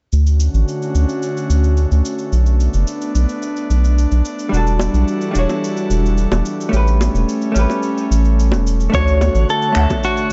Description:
sunset chillout; 109 BPM; 4/4; straight; D major; A4 = 440 Hz
airy breathy pad; sustained chords; 0.3-10.3 s; D3 to F#5; -25 LUFS; equal; chorus
round analog bass; bass; 0.1-9.9 s; E1 to D2; -16 LUFS; equal
cabasa and finger snaps; drums; 0.1-10.3 s; -34 LUFS; equal
vintage hollow-body jazz guitar; accompaniment; 4.5-10.3 s; G3 to F#5; -23 LUFS; equal; digital delay
bongos; percussion; 4.8-10.0 s; -25 LUFS; equal
clean electric guitar; melody; 8.9-10.3 s; F#4 to C#5; -20 LUFS; equal; spring reverb, digital delay
electronic kick drum; drums; 8.9-10.0 s; -25 LUFS; equal; overdrive
small room ambience; nothing above 7.9 kHz; -17 LUFS; mono
0.1-8.9 A section; 8.9-10.3 B section
0.1 Dmaj7; 2.3 Bm7; 4.5 Em11; 6.7 A9; 8.9 Dmaj7
| 0.13 0.68 1.23 1.78 | 2.33 2.88 3.43 3.98 | 4.53 5.08 5.63 6.18 | 6.73 7.28 7.83 8.38 | 8.94 9.49 10.04

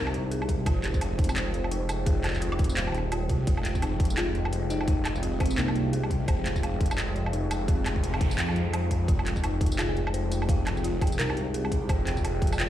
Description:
half-time drum and bass; 171 BPM; 4/4; swing 59% on 16ths, half-time; F minor; A4 = 437 Hz
bell-like FM electric piano; melody; 0.0-0.2, 4.2-5.9, 9.8-11.5 s; Bb3 to Bb4; -36 LUFS; right 1 dB; chorus, phaser, dub echo
deep dark ambient pad; sustained chords; 0.0-12.7 s; Ab3 to G5; -35 LUFS; equal; chorus, built-in reverb, sidechain pumping
dark detuned synth bell; arpeggios; 0.0-12.7 s; Eb4 to F5; -36 LUFS; left 3 dB; chorus, dub echo
phased detuned saw bass; bass; 0.0-12.7 s; Eb1 to F2; -29 LUFS; equal; phaser, tube saturation
drum and bass drum kit; drums; 0.1-12.7 s; handclaps, hi-hat, tambourine, woodblock; -34 LUFS; right 1 dB
electronic kick drum; drums; 0.5-12.5 s; -25 LUFS; equal
noise sweep; sound effects; 7.9-9.1 s; -40 LUFS; right 2 dB
pulsing gated texture; texture; 9.4-12.7 s; G5; -42 LUFS; right 3 dB; chorus, built-in reverb
little or no reverb; played on a big sound system in a bare room, large studio reverb; -24 LUFS; side -12 dB against mid
0.0-12.7 A section
noise sweep 7.9-9.1
0.0 Fmadd9
0.31 | 0.66 1.01 1.37 1.72 | 2.07 2.42 2.77 3.12 | 3.47 3.82 4.17 4.52 | 4.88 5.23 5.58 5.93 | 6.28 6.63 6.98 7.33 | 7.68 8.03 8.38 8.73 | 9.09 9.44 9.79 10.14 | 10.49 10.84 11.19 11.54 | 11.89 12.24 12.59

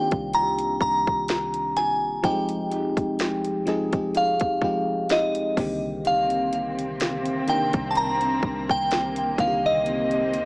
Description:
contemporary R&B; 63 BPM; 4/4; swing 54% on 16ths; C minor; A4 = 444 Hz
glassy synth bell; melody; 0.0-10.5 s; Eb5 to Bb5; -24 LUFS; equal; chorus, analog delay
FM electric piano; accompaniment; 0.0-10.5 s; D3 to Bb4; -28 LUFS; left 1 dB; chorus, analog delay
soft 808-style bass; bass; 0.1-10.5 s; F1 to Eb2; -39 LUFS; equal
trap drum kit; drums; 0.1-10.5 s; hi-hat, kick drum, snare drum; -28 LUFS; equal; analog delay
warm studio string section; sustained chords; 6.0-10.5 s; C3 to Eb5; -29 LUFS; equal
moderate spring reverb, RT60 2.5 s; echo-heavy mix, small speaker sound; -21 LUFS; side -28 dB against mid
0.0-10.5 A section
0.0 Cm7; 2.2 Fm9; 5.6 Cm9
0.33 1.28 | 2.24 3.19 4.14 5.09 | 6.05 7.00 7.95 8.90 | 9.86

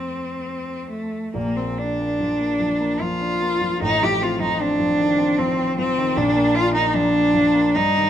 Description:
classical, romantic duo for cello and grand piano; 64-79 BPM; 3/4; rubato; Bb major; A4 = 440 Hz
rich cello; melody; 0.0-8.1 s; A3 to G4; -19 LUFS; equal
warm concert grand piano; accompaniment; 0.0-8.1 s; A1 to D4; -25 LUFS; equal
moderate recital hall reverb, RT60 1.5 s; close, detailed microphones; -18 LUFS; side -10 dB against mid
0.0-1.4 A section; 1.4-8.1 B section
0.0 F; 1.4 Bb; 3.8 F7/A; 6.2 Bb
0.45 | 1.36 2.20 3.01 | 3.83 4.62 5.39 | 6.17 6.93 7.75

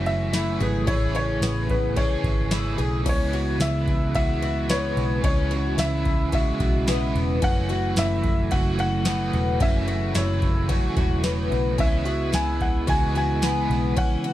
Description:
dream pop; 110 BPM; 4/4; straight; A4 = 441 Hz
felt-muted upright piano; melody; 0.0-14.3 s; B4 to G#5; -29 LUFS; left 1 dB; digital delay
crunchy overdriven guitar; accompaniment; 0.0-14.3 s; F#2 to G#4; -32 LUFS; right 4 dB; tremolo, ensemble chorus
mellow tonewheel organ; sustained chords; 0.0-14.3 s; C#3 to G#4; -28 LUFS; right 2 dB; stopped rotary speaker
picked twelve-string acoustic guitar; arpeggios; 0.0-14.3 s; B3 to G#4; -30 LUFS; left 4 dB; wide subtle chorus, digital delay
vintage muted picked electric bass; bass; 0.0-14.0 s; E1 to C#2; -26 LUFS; equal
booming analog drum machine; drums; 0.1-14.3 s; crash cymbal, kick drum, ride cymbal, snare drum, tambourine; -25 LUFS; equal
little or no reverb; dark, warm production; -20 LUFS; side -14 dB against mid
0.0-3.1 A section; 3.1-14.3 B section
0.0 F#m7; 0.9 Amaj7; 3.1 C#m7; 7.4 F#m7; 11.8 C#m7
0.34 | 0.88 1.43 1.97 2.52 | 3.06 3.61 4.15 4.70 | 5.24 5.79 6.33 6.88 | 7.43 7.97 8.52 9.06 | 9.61 10.15 10.70 11.24 | 11.79 12.34 12.88 13.43 | 13.97

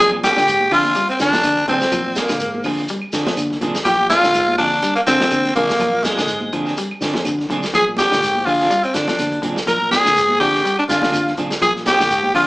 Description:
afrobeat; 124 BPM; 4/4; swing 55% on 16ths; Bb mixolydian; A4 = 441 Hz
raspy tenor saxophone; melody; 0.0-12.5 s; Ab3 to Bb4; -16 LUFS; equal
breathy hollow bass bansuri; second line; 0.0-12.4 s; Ab4 to Bb5; -25 LUFS; left 1 dB
clear alto saxophone; second line; 0.0-12.5 s; Ab3 to Bb4; -24 LUFS; right 1 dB
clean electric guitar; arpeggios; 0.0-12.5 s; D3 to G3; -29 LUFS; left 2 dB
electric guitar at the edge of break-up; stabs; 0.0-12.5 s; F3 to Ab4; -28 LUFS; right 2 dB; tremolo
fingered electric bass; bass; 0.0-12.5 s; Ab2 to D3; -25 LUFS; equal
shekere; percussion; 0.0-12.5 s; -32 LUFS; left 1 dB
vintage drum kit; drums; 0.2-12.5 s; hi-hat, kick drum, snare drum; -26 LUFS; equal
congas; percussion; 0.2-12.3 s; -29 LUFS; right 1 dB
claves; percussion; 0.4-12.5 s; -36 LUFS; right 1 dB
moderate large studio reverb, RT60 0.8 s; band playing live in one room, small speaker sound; -15 LUFS; side -20 dB against mid
0.0-12.5 A section
0.0 Bb9
0.48 0.96 1.45 | 1.93 2.41 2.90 3.38 | 3.87 4.35 4.83 5.32 | 5.80 6.29 6.77 7.26 | 7.74 8.22 8.71 9.19 | 9.68 10.16 10.65 11.13 | 11.61 12.10

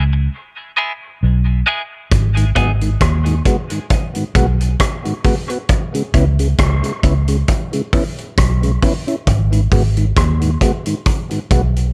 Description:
dub reggae; 67 BPM; 4/4; swing 56% on 16ths; G# minor; A4 = 441 Hz
clean electric guitar; accompaniment; 0.0-2.7 s; F#3 to G#4; -24 LUFS; equal; high-pass filter, dub echo
vintage muted fingered electric bass; bass; 0.0-11.9 s; G#1 to D#2; -17 LUFS; equal
vintage drum kit; drums; 2.1-11.9 s; hi-hat, kick drum, rim click; -19 LUFS; equal
mellow tonewheel organ; accompaniment; 2.4-11.6 s; G#2 to F#4; -24 LUFS; equal; slow rotary speaker, dub echo
studio ambience; -16 LUFS; mono
0.0-11.9 A section
break 0.0-2.1
0.0 C#m7; 2.1 G#m7; 5.7 C#m7; 9.3 G#m7
0.33 1.22 | 2.12 3.01 3.91 4.80 | 5.69 6.59 7.48 8.38 | 9.27 10.16 11.06

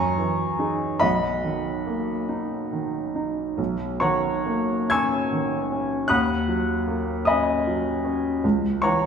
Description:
classical, impressionist solo piano; 43-52 BPM (dotted quarters); 6/8; rubato; B major; A4 = 436 Hz
clear baby grand piano; solo; 0.0-9.1 s; B1 to G#6; -21 LUFS; equal
wet recital hall reverb, RT60 1.6 s; heard from further back in the room; -22 LUFS; side -7 dB against mid
0.0-3.6 A section; 3.6-9.1 A section
0.0 F#13; 1.0 Bmaj7; 3.6 Bmaj9; 6.1 D#m7; 8.4 C#m
| 1.01 2.29 | 3.59 4.92 | 6.11 7.27 | 8.44

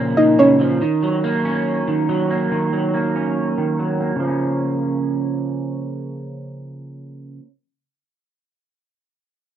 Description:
hip hop; 141 BPM; 4/4; half-time; Bb minor; A4 = 440 Hz
electric guitar at the edge of break-up; accompaniment; 0.0-7.5 s; Bb2 to Db4; -19 LUFS; right 2 dB; analog chorus, low-pass filter
soft round pluck; melody; 0.2-0.6 s; Db4 to Eb5; -15 LUFS; equal; chorus, low-pass filter, digital delay
light reverb; rough home demo mix; -17 LUFS; side -10 dB against mid
0.0-4.2 A section; 4.2-7.6 B section
0.0 Bbm; 0.8 Ebm7; 4.2 Bbm
0.39 | 0.81 1.24 1.66 2.09 | 2.51 2.94 3.37 3.79 | 4.22 4.64 5.07 5.49 | 5.92 6.34 6.77 7.20

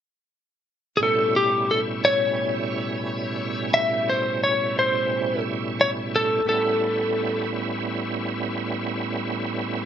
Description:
blues; 88 BPM; 4/4; swing 56% on 16ths; A mixolydian; A4 = 441 Hz
clean lap steel guitar; melody; 1.0-7.5 s; G4 to E5; -21 LUFS; left 1 dB; slapback echo
bright tonewheel organ; accompaniment; 1.0-9.9 s; A2 to E4; -26 LUFS; right 2 dB; slow rotary speaker, overdrive, chorus vibrato
moderate echo chamber reverb, RT60 1.3 s, digital ambience; -21 LUFS; side -9 dB against mid
0.0-1.0 A section; 1.0-9.9 B section
0.0 N.C.; 1.0 A7
0.33 | 1.01 1.69 2.37 3.05 | 3.73 4.42 5.10 5.78 | 6.46 7.14 7.82 8.51 | 9.19

